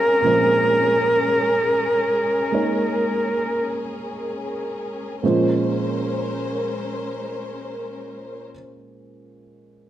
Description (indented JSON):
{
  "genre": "jazz ballad",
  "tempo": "40-57 BPM",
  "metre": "4/4",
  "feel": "swing 67% on 8ths",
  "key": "Bb minor",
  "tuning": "A4 = 440 Hz",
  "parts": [
    { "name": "warm alto saxophone", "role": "melody", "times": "0.0-3.8 s", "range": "Bb4", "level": "-18 LUFS", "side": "equal", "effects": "none" },
    { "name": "dark baby grand piano", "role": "accompaniment", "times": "0.0-9.9 s", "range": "Bb2 to Ab5", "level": "-24 LUFS", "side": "right 2 dB", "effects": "none" },
    { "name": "warm symphonic string section", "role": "sustained chords", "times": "0.0-8.4 s", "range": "Ab3 to C5", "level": "-27 LUFS", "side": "left 1 dB", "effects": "none" }
  ],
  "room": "wet large studio reverb, RT60 0.9 s",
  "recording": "none",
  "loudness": "-19 LUFS",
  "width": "side -12 dB against mid",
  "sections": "0.0-5.2 A section; 5.2-9.9 B section",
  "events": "slowing down 0.0-5.2",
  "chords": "0.0 Bbm9",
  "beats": "| 0.27 1.37 2.54 3.82 | 5.23 6.71 8.20 9.68"
}